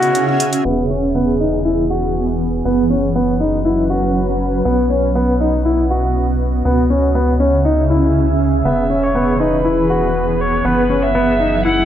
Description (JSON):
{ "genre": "piano and strings electronica", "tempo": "120 BPM", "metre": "4/4", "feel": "straight", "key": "unclear", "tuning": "A4 = 441 Hz", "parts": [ { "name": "granular cloud pad", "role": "sustained chords", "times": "0.0-11.8 s", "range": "B2 to F#5", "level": "-19 LUFS", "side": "right 1 dB", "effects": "built-in reverb" }, { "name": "clear grand piano", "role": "riff", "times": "0.0-11.8 s", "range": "B3 to F#4", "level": "-17 LUFS", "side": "left 1 dB", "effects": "digital delay" }, { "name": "electronic hi-hat", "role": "drums", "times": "0.0-0.6 s", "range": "none", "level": "-23 LUFS", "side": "right 1 dB", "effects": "small room ambience" }, { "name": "round analog bass", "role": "bass", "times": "0.6-11.8 s", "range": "E1 to C#2", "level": "-20 LUFS", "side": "equal", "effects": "none" }, { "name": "rich violin", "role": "melody", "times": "8.7-11.8 s", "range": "B4 to F#5", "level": "-18 LUFS", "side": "equal", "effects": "none" } ], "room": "moderate lush hall reverb, RT60 2.3 s", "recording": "low-pass filter", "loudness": "-13 LUFS", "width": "side -10 dB against mid", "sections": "0.7-11.8 A section", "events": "break 0.0-0.7; filter sweep 0.7-11.8", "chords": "0.0 C#m; 0.7 Eadd9; 2.7 F#sus4; 4.7 B; 6.7 C#m; 8.7 Eadd9; 10.7 F#sus4" }